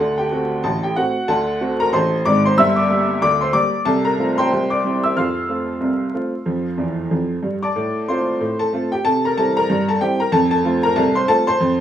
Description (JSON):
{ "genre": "ragtime piano", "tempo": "93 BPM", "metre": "2/4", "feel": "swing 58% on 16ths", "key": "F major", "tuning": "A4 = 440 Hz", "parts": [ { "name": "clear upright piano", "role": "solo", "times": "0.0-11.8 s", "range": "G1 to F6", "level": "-16 LUFS", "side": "equal", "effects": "none" } ], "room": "moderate studio reverb, RT60 0.5 s", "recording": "vinyl crackle, small room ambience", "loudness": "-16 LUFS", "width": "side -10 dB against mid", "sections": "0.0-7.8 A section; 7.8-11.8 B section", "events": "upright piano fill 6.8-7.8", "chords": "0.0 D7; 2.6 Gm; 3.9 F/C; 4.5 C; 5.2 F; 7.8 F/A; 9.1 C7; 10.3 F" }